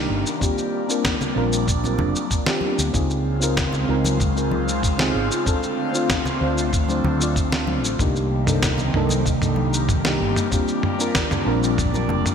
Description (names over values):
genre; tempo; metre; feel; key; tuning
sunset chillout; 95 BPM; 4/4; straight; unclear; A4 = 440 Hz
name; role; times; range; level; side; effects
mellow FM electric piano; accompaniment; 0.0-12.3 s; Bb3 to D5; -25 LUFS; equal; chorus, auto-pan, vintage 12-bit sampler grit, digital delay
airy breathy pad; sustained chords; 0.0-12.3 s; C3 to F4; -25 LUFS; left 1 dB; chorus, phaser
mellow fretless electric bass; bass; 0.0-12.2 s; F1 to D2; -24 LUFS; equal; none
dusty soul sampler-style drum kit; drums; 0.3-12.3 s; shaker, snare drum, toms; -25 LUFS; equal; studio reverb, gated reverb
electronic kick drum; drums; 0.4-11.9 s; none; -24 LUFS; equal; studio reverb
congas; percussion; 1.2-12.2 s; none; -31 LUFS; left 1 dB; none
room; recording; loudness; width
moderate lush hall reverb, RT60 2.7 s; bright 1980s-style digital production; -19 LUFS; side -7 dB against mid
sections
0.0-12.3 A section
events
none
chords
0.4 Bb6; 2.9 Dbmaj7; 5.5 Dm7; 8.0 Cm7; 10.5 Bb6